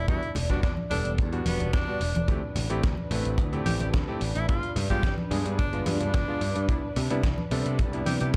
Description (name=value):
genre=nu-disco, nu disco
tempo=109 BPM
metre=4/4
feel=straight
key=E minor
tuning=A4 = 437 Hz
part: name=bright tenor saxophone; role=melody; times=0.0-8.3 s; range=B3 to G4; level=-36 LUFS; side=equal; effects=tape echo
part: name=dark studio string section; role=sustained chords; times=0.0-8.4 s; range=D4 to D5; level=-39 LUFS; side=equal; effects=vintage 12-bit sampler grit, sidechain pumping
part: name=modern bright picked electric bass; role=bass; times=0.0-8.4 s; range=E1 to C3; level=-32 LUFS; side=equal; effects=tube saturation, sidechain pumping
part: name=clear electric grand piano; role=accompaniment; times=0.1-8.4 s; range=G3 to B4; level=-36 LUFS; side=equal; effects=sidechain pumping, digital delay
part: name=dusty soul sampler-style drum kit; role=drums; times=0.1-8.4 s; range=hi-hat, snare drum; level=-39 LUFS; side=equal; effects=none
part: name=kick drum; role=drums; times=0.1-8.4 s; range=none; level=-31 LUFS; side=equal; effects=none
part: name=congas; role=percussion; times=0.3-8.3 s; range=none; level=-36 LUFS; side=equal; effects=none
room=small room reverb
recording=none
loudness=-27 LUFS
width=mono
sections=0.0-8.4 A section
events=none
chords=0.0 Em9; 2.3 D7sus4; 4.5 G7b9; 6.7 Cmaj9